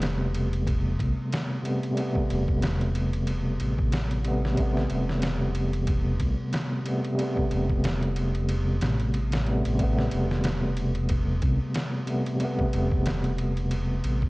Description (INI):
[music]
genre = trip hop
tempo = 92 BPM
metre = 4/4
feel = swing 57% on 16ths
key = A minor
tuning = A4 = 440 Hz
[part]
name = overdriven tine electric piano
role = accompaniment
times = 0.0-14.3 s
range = C3 to B3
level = -27 LUFS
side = equal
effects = tremolo
[part]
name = dark detuned saw bass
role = bass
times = 0.0-14.3 s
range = E1 to C2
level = -28 LUFS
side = equal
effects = tube saturation
[part]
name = trip hop sampler-style drum kit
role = drums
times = 0.0-14.3 s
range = kick drum, ride cymbal, snare drum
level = -30 LUFS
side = equal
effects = none
[sound]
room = light reverb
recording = worn, warbling old tape, cassette tape, warbly pitch drift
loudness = -24 LUFS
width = side -22 dB against mid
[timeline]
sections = 0.0-14.3 A section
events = none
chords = 0.0 Am9